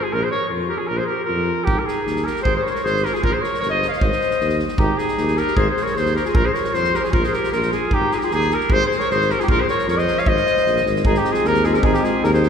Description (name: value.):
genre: balkan folk, Balkan brass band.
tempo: 154 BPM.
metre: 2/4.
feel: straight.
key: Ab major.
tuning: A4 = 439 Hz.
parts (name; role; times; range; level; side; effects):
clear trumpet; melody; 0.0-12.5 s; G4 to F5; -21 LUFS; equal; none.
clear clarinet; second line; 0.0-12.5 s; Eb4 to Db5; -24 LUFS; left 4 dB; none.
mellow tuba; bass; 0.1-12.5 s; G1 to F2; -24 LUFS; right 1 dB; none.
natural country drum kit; percussion; 1.7-12.5 s; kick drum, snare drum; -24 LUFS; right 1 dB; none.
dark French horn; accompaniment; 11.1-12.5 s; C4; -26 LUFS; left 6 dB; none.
warm euphonium; accompaniment; 11.1-12.5 s; Ab3; -24 LUFS; right 1 dB; none.
room: wet church reverb, RT60 3.2 s.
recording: recorded in a church or concert hall.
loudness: -17 LUFS.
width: side -7 dB against mid.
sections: 0.0-4.8 A section; 4.8-11.0 A section; 11.0-12.5 B section.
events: none.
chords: 0.1 Bb5; 1.7 Ab5; 3.2 Eb13; 4.0 Ab5; 6.4 Bb5; 7.9 Ab5; 9.5 Bb5; 10.3 Ab.